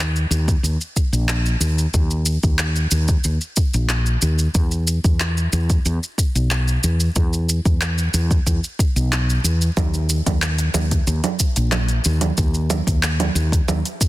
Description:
sunset chillout; 92 BPM; 4/4; straight; A4 = 441 Hz
woody fretless electric bass; bass; 0.0-13.8 s; Bb1 to E2; -19 LUFS; equal; tube saturation
deep house drum kit; drums; 0.0-14.1 s; congas, handclaps, hi-hat, shaker; -23 LUFS; right 2 dB
electronic kick drum; drums; 0.5-14.1 s; -19 LUFS; equal
little or no reverb; dense, heavily limited modern master; -17 LUFS; side -17 dB against mid
0.0-14.1 A section
0.64 1.29 | 1.95 2.60 3.25 3.90 | 4.55 5.21 5.86 6.51 | 7.16 7.81 8.47 9.12 | 9.77 10.42 11.07 11.73 | 12.38 13.03 13.68

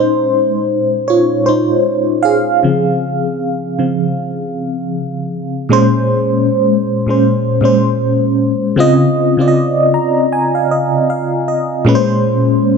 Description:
R&B; 78 BPM; 4/4; swing 58% on 16ths; Bb minor; A4 = 440 Hz
FM electric piano with tremolo; solo; 0.0-12.8 s; Bb2 to Bb5; -12 LUFS; equal; phaser
light reverb; dark, warm production; -12 LUFS; side -5 dB against mid
0.0-5.7 A section; 5.7-12.8 B section
FM electric piano solo 0.0-5.7; FM electric piano fill 9.5-11.9
0.0 Bbm9; 2.6 Dbmaj7; 5.7 Bbm9; 8.8 Dbmaj9; 11.9 Bbm9
0.32 1.08 1.85 | 2.62 3.39 4.16 4.93 | 5.70 6.47 7.24 8.01 | 8.78 9.55 10.31 11.08 | 11.85 12.62

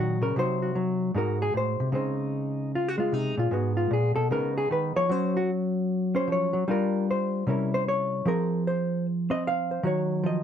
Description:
solo jazz; 152 BPM; 4/4; swing 65% on 8ths; Db major; A4 = 440 Hz
hollow-body jazz guitar; solo; 0.0-10.4 s; Ab2 to F5; -24 LUFS; equal
moderate studio ambience, RT60 0.5 s; -24 LUFS; side -8 dB against mid
0.0-1.9 A section; 1.9-10.4 A section
hollow-body jazz guitar solo 0.0-1.9, 1.9-10.4
0.4 Cdim; 1.1 Ab7b9; 1.9 Dbsus2; 3.5 Abm; 4.3 Db9; 5.1 Gb5; 6.7 Gm7; 7.5 C7b9; 8.3 Fm; 9.8 Ebm7
| 0.36 0.76 1.15 1.54 | 1.94 2.33 2.73 3.12 | 3.52 3.91 4.31 4.70 | 5.10 5.49 5.89 6.28 | 6.68 7.07 7.47 7.86 | 8.26 8.65 9.05 9.44 | 9.84 10.23

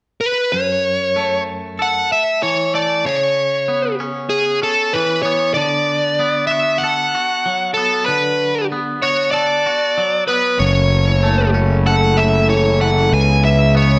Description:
rock; 95 BPM; 4/4; straight; F# minor; A4 = 438 Hz
smooth overdriven lead guitar; melody; 0.2-14.0 s; G#4 to G#5; -19 LUFS; equal; slapback echo
twangy electric guitar; arpeggios; 0.5-14.0 s; F#2 to A4; -25 LUFS; equal; harmonic tremolo, slapback echo
muted symphonic string section; sustained chords; 10.6-14.0 s; C#3 to E4; -26 LUFS; equal
fuzz fingered electric bass; bass; 10.6-14.0 s; F#1 to C#2; -17 LUFS; equal; overdrive
vibraphone with soft mallets; arpeggios; 10.9-14.0 s; A4 to C#5; -24 LUFS; equal; slapback echo
moderate scoring stage reverb, RT60 1.8 s, small room reverb; -17 LUFS; mono
0.5-10.6 A section; 10.6-14.0 A section
0.0 N.C.; 0.5 F#m7; 3.0 C#m7; 5.6 Bm7/D; 10.6 F#m7; 13.1 C#m7
| 0.53 1.16 1.79 2.42 | 3.04 3.67 4.30 4.93 | 5.56 6.19 6.82 7.45 | 8.08 8.71 9.34 9.97 | 10.60 11.23 11.86 12.49 | 13.13 13.76

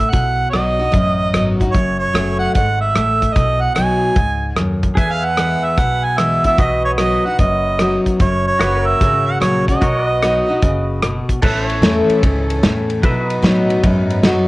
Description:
honky-tonk and classic country; 149 BPM; 4/4; swing 66% on 8ths; A4 = 440 Hz
clear harmonica; second line; 0.0-11.0 s; C#5 to G#5; -18 LUFS; right 2 dB; cassette tape
picked steel-string acoustic guitar; accompaniment; 0.0-14.5 s; E2 to F#4; -18 LUFS; left 1 dB; cassette tape
natural country drum kit; drums; 0.0-14.4 s; crash cymbal, hi-hat, kick drum, ride cymbal, rim click, snare drum; -17 LUFS; equal; cassette tape
upright bass; bass; 0.1-14.5 s; F#1 to B2; -22 LUFS; equal
pedal steel guitar; sustained chords; 5.0-14.5 s; F#4 to E5; -23 LUFS; equal; lush chorus, cassette tape
warm chamber string section; sustained chords; 11.4-14.5 s; E3 to A4; -24 LUFS; equal; cassette tape
moderate spring reverb, RT60 1.2 s, small room reverb; home recording on cassette; -13 LUFS; side -19 dB against mid
0.0-11.4 A section; 11.4-14.5 B section
harmonica solo 0.0-11.4
0.1 B; 1.7 F#m; 3.4 B; 5.0 E; 6.6 B; 8.2 F#; 9.8 B; 11.4 A; 13.0 B
| 0.13 0.54 0.94 1.34 | 1.75 2.15 2.55 2.96 | 3.36 3.76 4.17 4.57 | 4.97 5.38 5.78 6.18 | 6.59 6.99 7.39 7.80 | 8.20 8.61 9.01 9.41 | 9.81 10.22 10.62 11.02 | 11.43 11.83 12.23 12.63 | 13.03 13.44 13.84 14.24

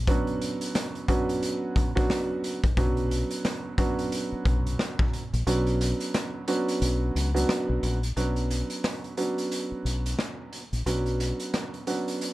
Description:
hip hop, boom-bap hip-hop; 89 BPM; 4/4; swing 60% on 16ths; B minor; A4 = 439 Hz
deep dub fingered electric bass; bass; 0.0-11.3 s; A#1 to C#2; -27 LUFS; equal
dark upright piano; accompaniment; 0.1-12.3 s; F#3 to F#4; -28 LUFS; right 2 dB; cassette tape, high-pass filter, low-pass filter
raw garage drum kit; drums; 0.1-12.3 s; hi-hat, kick drum, rim click, snare drum; -29 LUFS; equal
little or no reverb; -25 LUFS; side -17 dB against mid
0.0-8.2 A section; 8.2-12.3 B section
break 0.1-2.8, 8.2-12.3; kick muted 5.5-8.2
0.0 Bmadd9
| 0.07 0.75 1.42 2.10 | 2.77 3.44 4.12 4.79 | 5.47 6.14 6.82 7.49 | 8.16 8.84 9.51 10.19 | 10.86 11.54 12.21

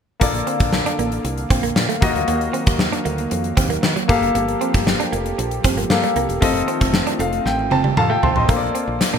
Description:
1980s-style pop; 116 BPM; 4/4; straight; Bb major; A4 = 442 Hz
clear baby grand piano; accompaniment; 0.2-9.2 s; Bb3 to C6; -22 LUFS; left 3 dB
warm analog pad; sustained chords; 0.2-8.5 s; D3 to F5; -26 LUFS; right 1 dB; chorus
direct-recorded clean electric guitar; riff; 0.2-9.2 s; Gb3 to D4; -26 LUFS; right 7 dB; lush chorus, ping-pong delay
woody fretless electric bass; bass; 0.2-9.2 s; E1 to Eb3; -25 LUFS; equal
gated 80s drum kit; drums; 0.2-9.1 s; hi-hat, kick drum, snare drum, toms; -20 LUFS; equal
moderate plate reverb, RT60 2.5 s; bright 1980s-style digital production; -16 LUFS; side -7 dB against mid
0.2-8.5 A section
grand piano fill 6.9-8.5; drum fill 7.5-8.5
0.2 Bbmaj7; 2.0 Ebmadd9; 4.1 Gm9; 6.4 F7; 8.5 Bbmaj7
| 0.21 0.73 1.25 1.76 | 2.28 2.80 3.32 3.83 | 4.35 4.87 5.39 5.90 | 6.42 6.94 7.46 7.97 | 8.49 9.01

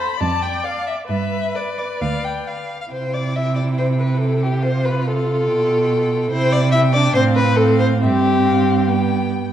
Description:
quick classical-period movement for string quartet; 130-146 BPM; 4/4; rubato; C major; A4 = 441 Hz
rich violin; melody; 0.0-9.5 s; D5 to B5; -28 LUFS; left 6 dB
rich violin; second line; 0.0-9.3 s; G4 to G5; -20 LUFS; left 2 dB
clear viola; accompaniment; 0.0-9.5 s; B3 to D5; -23 LUFS; right 2 dB
rich cello; bass; 0.2-9.5 s; D2 to C3; -20 LUFS; right 3 dB
moderate scoring stage reverb, RT60 1.6 s; dark, warm production; -16 LUFS; side -10 dB against mid
0.0-2.9 A section; 2.9-9.5 B section
0.2 Dm/F; 1.1 G; 2.9 C; 4.6 F/C; 5.5 G7/B; 6.3 C; 7.2 F/A; 8.0 C/G; 8.9 G
0.20 0.64 | 1.09 1.55 2.01 2.46 | 2.91 3.35 3.78 4.21 | 4.64 5.06 5.48 5.89 | 6.31 6.74 7.16 7.59 | 8.02 8.45 8.88 9.32

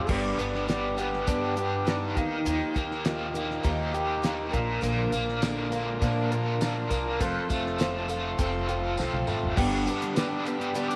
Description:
folk rock and heartland rock; 101 BPM; 4/4; straight; A4 = 441 Hz
pedal steel guitar; second line; 0.0-3.0 s; Eb4 to D5; -36 LUFS; equal
picked twelve-string acoustic guitar; accompaniment; 0.0-11.0 s; G2 to Bb4; -34 LUFS; equal
warm grand piano; accompaniment; 0.0-11.0 s; G4 to B5; -40 LUFS; equal
tonewheel organ; sustained chords; 0.0-0.1, 4.8-11.0 s; B3 to D5; -42 LUFS; equal
biting overdriven guitar; riff; 0.0-11.0 s; F2 to G4; -34 LUFS; equal; harmonic tremolo
upright bass; bass; 0.0-9.9 s; F1 to Bb2; -35 LUFS; equal
damped 70s drum kit; drums; 0.1-11.0 s; crash cymbal, hi-hat, kick drum, snare drum, toms; -34 LUFS; equal
tambourine; percussion; 4.8-10.9 s; -49 LUFS; equal
moderate echo chamber reverb, RT60 2.5 s; -28 LUFS; mono
0.1-9.6 A section; 9.6-11.0 B section
grand piano fill 7.8-9.6; drum fill 9.0-9.6
0.1 G; 2.2 Ebadd9; 4.5 Bb; 7.2 F; 9.6 G
| 0.09 0.69 1.28 1.87 | 2.46 3.06 3.65 4.25 | 4.84 5.43 6.02 6.62 | 7.21 7.80 8.39 8.99 | 9.58 10.17 10.76

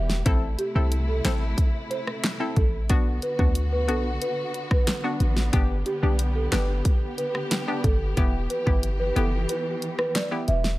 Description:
dancehall; 91 BPM; 4/4; straight; A dorian; A4 = 439 Hz
buzzing marimba with soft mallets; melody; 0.0-10.6 s; G4 to E5; -30 LUFS; right 1 dB; tape echo
dark studio string section; sustained chords; 0.0-10.8 s; C3 to G4; -33 LUFS; equal; sidechain pumping
warm 808-style bass; bass; 0.0-10.8 s; E1 to D2; -24 LUFS; equal
pop drum kit; drums; 0.1-10.8 s; handclaps, hi-hat, kick drum, rim click, snare drum; -24 LUFS; equal
hollow square pluck; accompaniment; 0.3-10.5 s; B3 to A4; -30 LUFS; left 2 dB; chorus
digital ambience; -22 LUFS; side -18 dB against mid
0.0-10.8 A section
break 9.5-10.8
0.3 Am; 2.9 Bm; 5.5 G; 8.2 Em
| 0.26 0.92 1.58 2.24 | 2.90 3.56 4.22 4.88 | 5.54 6.20 6.85 7.51 | 8.17 8.83 9.49 10.15

